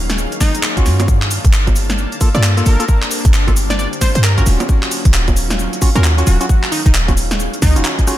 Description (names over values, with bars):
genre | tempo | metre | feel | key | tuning
UK garage, two-step garage | 133 BPM | 4/4 | swing 62% on 16ths | unclear | A4 = 440 Hz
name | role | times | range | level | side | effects
warm analog pad | sustained chords | 0.0-8.2 s | Gb3 to A5 | -30 LUFS | left 1 dB | chorus, tremolo, sidechain pumping
short 808-style bass | bass | 0.0-7.8 s | Eb1 to G2 | -14 LUFS | equal | none
deep dark ambient pad | texture | 0.0-8.2 s | D4 to F5 | -28 LUFS | equal | chorus, built-in reverb, sidechain pumping
garage drum kit | drums | 0.1-8.2 s | bongos, cabasa, handclaps, hi-hat, rim click, snare drum | -19 LUFS | right 1 dB | none
plucky unison lead | melody | 0.4-8.0 s | Eb4 to D5 | -24 LUFS | equal | ping-pong delay
electronic kick drum | drums | 0.4-8.1 s | none | -14 LUFS | equal | none
percussive organ stab | stabs | 0.8-8.2 s | Bb3 to A4 | -24 LUFS | equal | chorus, ping-pong delay
room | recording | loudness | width
little or no reverb | none | -12 LUFS | side -14 dB against mid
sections
0.0-8.2 A section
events
none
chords
0.0 Ebm9; 1.1 Gm9; 4.5 Ebm9